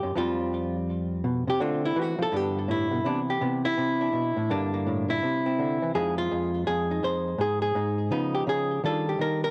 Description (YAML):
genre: solo jazz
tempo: 166 BPM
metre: 4/4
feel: swing 63% on 8ths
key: C major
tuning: A4 = 440 Hz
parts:
  - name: hollow-body jazz guitar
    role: solo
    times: 0.0-9.5 s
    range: F2 to C5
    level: -27 LUFS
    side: equal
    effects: cassette tape, tape echo
room: light reverb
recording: home recording on cassette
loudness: -27 LUFS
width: mono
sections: 0.0-3.1 A section; 3.1-9.5 B section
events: hollow-body jazz guitar solo 0.0-3.1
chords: 0.2 Fsus2; 1.6 Dm9; 2.3 G; 3.1 Cmaj9; 4.5 Gm; 5.2 C; 5.9 Fm7; 7.4 Ab5; 8.1 Db9; 8.8 Ebmaj9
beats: | 0.16 0.52 0.89 1.25 | 1.61 1.97 2.33 2.69 | 3.05 3.41 3.77 4.14 | 4.50 4.86 5.22 5.58 | 5.95 6.31 6.67 7.03 | 7.39 7.76 8.12 8.48 | 8.84 9.21